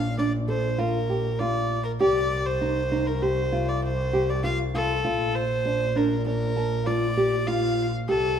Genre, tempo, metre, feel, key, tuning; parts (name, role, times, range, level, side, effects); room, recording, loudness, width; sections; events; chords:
contemporary instrumental, chamber music in an uneven meter; 99 BPM; 5/4; straight; A4 = 436 Hz
rich violin; melody; 0.0-8.4 s; A4 to F5; -28 LUFS; right 1 dB
nylon-string guitar; arpeggios; 0.0-8.4 s; D4 to A5; -26 LUFS; equal
clear double bass; bass; 0.0-8.4 s; Bb1 to C2; -28 LUFS; equal
wet recital hall reverb, RT60 1.7 s; minimal, uncompressed stereo recording; -22 LUFS; side -8 dB against mid
0.0-8.4 A section
0.0 Bb; 2.0 Cm; 5.0 Bb